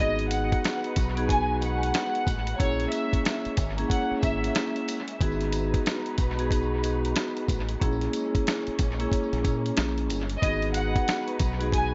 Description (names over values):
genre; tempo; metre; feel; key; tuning
hip hop, boom-bap hip-hop; 92 BPM; 4/4; swing 62% on 16ths; G# minor; A4 = 441 Hz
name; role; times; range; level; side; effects
warm studio violin section; melody; 0.0-4.5, 10.4-11.9 s; C#5 to G#5; -32 LUFS; equal; high-pass filter, low-pass filter, dub echo
vibraphone with medium mallets; accompaniment; 0.0-11.9 s; A#3 to G#4; -32 LUFS; equal; high-pass filter, low-pass filter, dub echo
muted studio string section; sustained chords; 0.0-11.9 s; G#3 to B4; -40 LUFS; equal; high-pass filter, low-pass filter
deep dub fingered electric bass; bass; 0.0-11.9 s; G1 to A#2; -32 LUFS; equal; none
dusty soul sampler-style drum kit; drums; 0.2-11.9 s; hi-hat, kick drum, snare drum; -30 LUFS; equal; dub echo
tambourine; percussion; 0.3-11.6 s; none; -51 LUFS; equal; none
room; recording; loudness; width
light reverb, studio reverb; echo-heavy mix, nothing above 7.8 kHz; -27 LUFS; mono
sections
0.0-11.9 A section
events
none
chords
0.0 G#m7; 2.6 A#m7b5; 5.2 G#m7; 7.8 A#m7b5; 10.4 G#m7